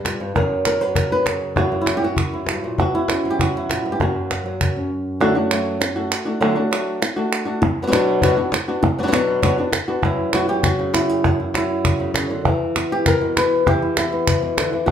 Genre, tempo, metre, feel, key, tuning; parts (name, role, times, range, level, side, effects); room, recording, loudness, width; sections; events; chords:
flamenco; 198 BPM; 4/4; straight; F# phrygian dominant; A4 = 445 Hz
flamenco guitar; melody; 0.0-14.9 s; F#2 to B4; -19 LUFS; equal
cajon; percussion; 0.0-4.8, 7.6-14.9 s; -23 LUFS; left 1 dB
palmas hand claps; percussion; 0.1-14.9 s; -24 LUFS; right 4 dB
wet large studio reverb, RT60 0.8 s; band playing live in one room; -17 LUFS; side -8 dB against mid
0.0-5.2 A section; 5.2-10.0 B section; 10.0-14.9 C section
stop 4.9-5.2
0.4 F#; 1.6 F#7; 2.8 Bsus2; 4.0 F#; 5.2 D; 7.6 Bm; 10.0 F#7sus4; 12.5 Em